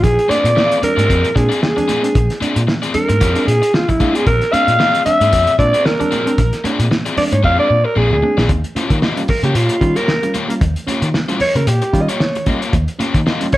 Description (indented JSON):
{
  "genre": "funk",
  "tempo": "113 BPM",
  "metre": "4/4",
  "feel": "swing 56% on 16ths",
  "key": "unclear",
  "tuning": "A4 = 439 Hz",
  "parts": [
    { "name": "breathy alto saxophone", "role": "melody", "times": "0.0-13.6 s", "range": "E4 to F5", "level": "-16 LUFS", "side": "equal", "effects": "slapback echo, plate reverb" },
    { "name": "reed electric piano", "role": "stabs", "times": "0.0-13.5 s", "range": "Bb2 to F4", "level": "-23 LUFS", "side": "right 1 dB", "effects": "none" },
    { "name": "vintage muted picked electric bass", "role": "bass", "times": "0.0-13.6 s", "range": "Bb1 to Eb3", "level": "-17 LUFS", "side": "equal", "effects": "none" },
    { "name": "cloth-damped thuddy drum kit", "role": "drums", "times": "0.0-13.6 s", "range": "hi-hat, kick drum, snare drum", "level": "-19 LUFS", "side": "equal", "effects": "none" },
    { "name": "congas", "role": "percussion", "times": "0.0-13.6 s", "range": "none", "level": "-26 LUFS", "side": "right 4 dB", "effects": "none" },
    { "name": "crunchy overdriven guitar", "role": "accompaniment", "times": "0.3-13.6 s", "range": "Bb3 to F5", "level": "-22 LUFS", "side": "left 4 dB", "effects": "none" }
  ],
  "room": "moderate studio ambience, RT60 0.5 s",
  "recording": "none",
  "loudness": "-13 LUFS",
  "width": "side -16 dB against mid",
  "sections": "0.0-8.5 A section; 8.5-13.6 B section",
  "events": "alto saxophone solo 0.0-8.5; drum fill 7.4-8.5",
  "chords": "0.0 Bb9; 8.5 Eb9",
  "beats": "| 0.03 0.56 1.09 1.62 | 2.15 2.68 3.21 3.74 | 4.27 4.80 5.33 5.86 | 6.38 6.91 7.44 7.97 | 8.50 9.03 9.55 10.09 | 10.61 11.14 11.68 12.21 | 12.74 13.27"
}